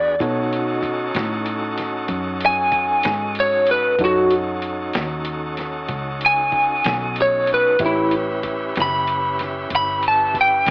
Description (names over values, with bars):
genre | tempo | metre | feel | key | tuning
slow blues | 63 BPM (dotted quarters) | 12/8 | straight | unclear | A4 = 437 Hz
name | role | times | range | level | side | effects
lightly driven lead guitar | melody | 0.0-10.7 s | E4 to B5 | -16 LUFS | equal | cassette tape
warm grand piano | accompaniment | 0.0-10.7 s | D4 to C#5 | -27 LUFS | equal | cassette tape
bright tonewheel organ | sustained chords | 0.0-10.7 s | C#4 to B4 | -26 LUFS | equal | slow rotary speaker, overdrive, cassette tape
vintage muted fingered electric bass | bass | 0.0-10.7 s | F#1 to B2 | -30 LUFS | equal | none
lo-fi sampler-style drum kit | drums | 0.2-10.7 s | hi-hat, kick drum, snare drum | -26 LUFS | equal | cassette tape
room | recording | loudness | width
moderate small room reverb, RT60 0.6 s | home recording on cassette, AM radio sound | -17 LUFS | side -28 dB against mid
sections
0.0-10.7 A section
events
lead electric guitar solo 0.0-10.7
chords
0.2 B7; 7.8 A7